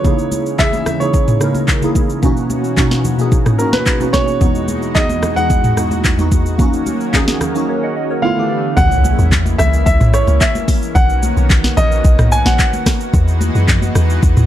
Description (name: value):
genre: amapiano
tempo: 110 BPM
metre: 4/4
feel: straight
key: C# dorian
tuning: A4 = 440 Hz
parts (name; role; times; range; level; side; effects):
- clear baby grand piano; melody; 0.0-12.8 s; A#4 to G#5; -19 LUFS; right 1 dB; tape echo
- glassy digital keys; accompaniment; 0.0-8.8 s; E2 to F#5; -17 LUFS; right 1 dB; chorus
- lush unison pad; sustained chords; 0.0-14.5 s; B2 to F#4; -24 LUFS; equal; chorus, sidechain pumping
- afro-pop drum kit; drums; 0.0-14.5 s; handclaps, hi-hat, kick drum, rim click, shaker, snare drum, toms; -15 LUFS; equal; none
- congas; percussion; 0.0-14.1 s; none; -24 LUFS; left 1 dB; none
- deep log drum bass; bass; 8.8-14.5 s; A#1 to F#2; -14 LUFS; equal; none
- impact; sound effects; 8.8-11.0 s; none; -22 LUFS; equal; none
room: digital ambience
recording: dark, warm production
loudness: -12 LUFS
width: side -12 dB against mid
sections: 0.0-8.8 A section; 8.8-14.5 B section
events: drop 8.8-14.5; impact 8.8-11.0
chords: 0.0 C#m69; 2.2 Bmaj9; 4.4 Emaj9; 6.6 D#m7; 8.2 Dm69; 8.8 C#m6; 11.0 Bmaj9; 13.1 Emaj9